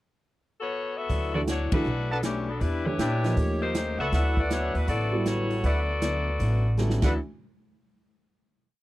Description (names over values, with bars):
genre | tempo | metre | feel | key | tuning
jazz, big band swing | 158 BPM | 4/4 | swing 65% on 8ths | D major | A4 = 439 Hz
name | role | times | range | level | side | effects
bright saxophone section | melody | 0.6-7.2 s | E3 to E5 | -30 LUFS | left 3 dB | none
picked steel-string acoustic guitar | accompaniment | 1.1-7.1 s | B2 to G4 | -34 LUFS | left 4 dB | none
upright bass | bass | 1.1-7.1 s | A1 to Bb2 | -27 LUFS | equal | none
swinging big-band drum kit | drums | 1.1-7.1 s | crash cymbal, hi-hat, kick drum, ride cymbal, snare drum | -29 LUFS | right 1 dB | none
warm grand piano | accompaniment | 1.3-7.2 s | E3 to A4 | -29 LUFS | right 2 dB | none
warm trumpet section | stabs | 2.1-7.1 s | D4 to A5 | -31 LUFS | right 1 dB | none
room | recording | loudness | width
little or no reverb | dry, close 1970s-style studio recording | -24 LUFS | side -16 dB against mid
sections
0.0-1.1 pickup bar; 1.1-7.2 A section; 7.2-8.7 final hit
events
band accent 1.7; drum fill 6.8-7.2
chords
0.0 B7sus2; 1.1 D69; 1.9 Bm7; 2.6 Em7; 3.4 Eb7#11; 4.1 D69; 7.2 N.C.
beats
0.34 0.72 | 1.10 1.48 1.85 2.23 | 2.61 2.99 3.37 3.75 | 4.13 4.50 4.88 5.26 | 5.64 6.02 6.40 6.78 | 7.16